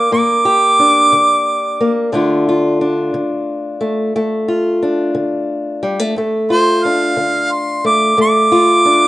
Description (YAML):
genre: acoustic country blues, solo or duo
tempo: 60 BPM (dotted quarters)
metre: 12/8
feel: straight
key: D minor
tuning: A4 = 440 Hz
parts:
  - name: warm harmonica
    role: melody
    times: 0.0-9.1 s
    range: C5 to D6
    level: -12 LUFS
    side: right 1 dB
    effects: none
  - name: fingerpicked old ladder-braced acoustic guitar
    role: accompaniment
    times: 0.0-9.1 s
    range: D2 to G4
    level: -15 LUFS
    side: left 1 dB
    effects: plate reverb
room: wet small room ambience, RT60 0.5 s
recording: rough home demo mix, nothing above 10.7 kHz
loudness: -12 LUFS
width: side -16 dB against mid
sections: 0.0-9.1 A section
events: harmonica solo 0.0-9.1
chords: 0.0 Gm; 2.1 Dm